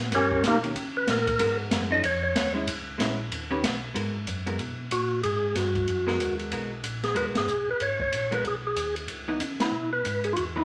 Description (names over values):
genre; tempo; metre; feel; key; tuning
soul jazz organ trio; 187 BPM; 4/4; swing 61% on 8ths; G# minor; A4 = 436 Hz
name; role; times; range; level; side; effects
mellow tonewheel organ; bass; 0.0-10.6 s; G#1 to C#3; -36 LUFS; equal; chorus vibrato, slow rotary speaker
open jazz drum kit; drums; 0.0-10.5 s; hi-hat, kick drum, ride cymbal, snare drum; -34 LUFS; equal; none
percussive tonewheel organ; melody; 0.1-2.5, 4.9-10.6 s; A#3 to D#5; -28 LUFS; equal; fast rotary speaker
vintage hollow-body jazz guitar; accompaniment; 0.6-10.6 s; D#3 to B4; -34 LUFS; equal; none
room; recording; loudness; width
wet studio reverb, RT60 0.9 s; none; -27 LUFS; mono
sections
0.0-4.0 A section; 4.0-10.6 B section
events
tonewheel organ solo 0.0-4.0; band accent 7.3, 9.6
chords
0.0 D#7 (rootless); 1.4 G#m9; 2.0 D#9sus4; 2.7 A#m7b5; 3.3 D#aug7; 4.0 G#m9; 9.1 C#m7